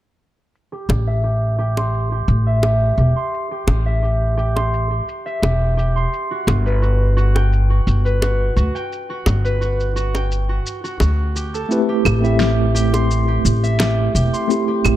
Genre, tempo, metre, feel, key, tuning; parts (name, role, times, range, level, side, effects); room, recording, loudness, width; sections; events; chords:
sunset chillout; 86 BPM; 4/4; straight; A dorian; A4 = 441 Hz
electronic shaker, claves and snare drum; drums; 0.6-15.0 s; -26 LUFS; right 1 dB; low-pass filter on perc, low-pass filter on snare
concert harp; arpeggios; 0.7-15.0 s; F#4 to C6; -23 LUFS; right 1 dB; low-pass filter, tape echo
upright bass; bass; 0.9-15.0 s; E1 to D2; -17 LUFS; equal
bongos; percussion; 0.9-15.0 s; -26 LUFS; equal
mellow tine electric piano; accompaniment; 11.7-15.0 s; A3 to B4; -19 LUFS; right 1 dB; medium stereo tremolo, auto-pan, tape echo
light reverb, small room ambience; dark, warm production; -16 LUFS; side -13 dB against mid
0.5-15.0 A section
filter sweep on harp 0.5-15.0
0.5 Am7; 6.1 Gmaj7; 11.7 Am7